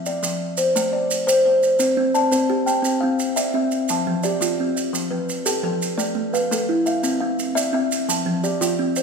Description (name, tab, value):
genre	southern african traditional, mbira-style interlocking cycle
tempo	114 BPM (dotted quarters)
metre	12/8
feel	straight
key	unclear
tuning	A4 = 440 Hz
part	kalimba	arpeggios	0.0-9.0 s	F3 to A5	-21 LUFS	left 2 dB	none
part	maracas	percussion	0.1-9.0 s	none	-27 LUFS	right 6 dB	none
part	kalimba	arpeggios	2.0-9.0 s	F3 to A5	-22 LUFS	right 2 dB	none
room	moderate recital hall reverb, RT60 1.5 s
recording	recorded in a church or concert hall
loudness	-18 LUFS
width	side -5 dB against mid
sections	0.0-9.0 A section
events	none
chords	0.0 F5; 0.7 Am; 1.8 C; 3.9 F; 6.0 A5; 7.0 C; 8.1 F